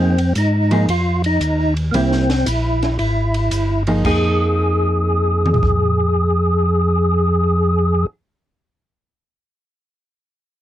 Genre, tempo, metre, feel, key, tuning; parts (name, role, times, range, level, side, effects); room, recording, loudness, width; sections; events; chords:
soul jazz organ trio; 114 BPM; 4/4; swing 67% on 8ths; F minor; A4 = 441 Hz
percussive tonewheel organ; melody; 0.0-8.1 s; Bb3 to Ab4; -19 LUFS; equal; slow rotary speaker, overdrive, chorus vibrato
vintage hollow-body jazz guitar; accompaniment; 0.0-8.1 s; F3 to Ab4; -22 LUFS; right 2 dB
mellow tonewheel organ; bass; 0.0-8.1 s; G1 to Ab2; -18 LUFS; equal; overdrive
compact cocktail drum kit; drums; 0.2-5.8 s; crash cymbal, hi-hat, kick drum, ride cymbal, snare drum, toms; -26 LUFS; equal
little or no reverb; worn, warbling old tape, cassette tape, warbly pitch drift; -15 LUFS; side -12 dB against mid
0.0-4.0 A section; 4.0-8.3 B section
0.0 Fm7; 1.9 C7; 4.0 Fm7